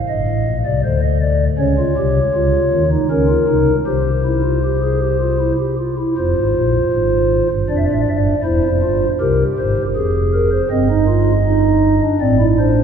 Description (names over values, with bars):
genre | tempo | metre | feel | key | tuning
classical, baroque-style 3-part fugue for pipe organ | 79 BPM | 3/4 | straight | F minor | A4 = 439 Hz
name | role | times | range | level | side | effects
pipe organ, stopped flute | solo | 0.1-12.8 s | E1 to E5 | -14 LUFS | equal | none
room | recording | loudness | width
wet cathedral reverb, RT60 4.1 s | none | -14 LUFS | side -7 dB against mid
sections
0.0-6.2 A section; 6.2-12.8 B section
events
none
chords
0.0 Adim; 0.8 Cmadd9/D; 1.6 Eb13/C; 3.1 Dbmaj13; 3.9 C; 6.2 Fm; 7.7 G5/F; 8.4 C/E; 10.0 Fm; 10.7 Cm/G (rootless); 12.2 D5/A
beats
0.08 0.83 | 1.58 2.34 3.10 | 3.86 4.63 5.40 | 6.17 6.93 7.69 | 8.45 9.21 9.96 | 10.72 11.47 12.23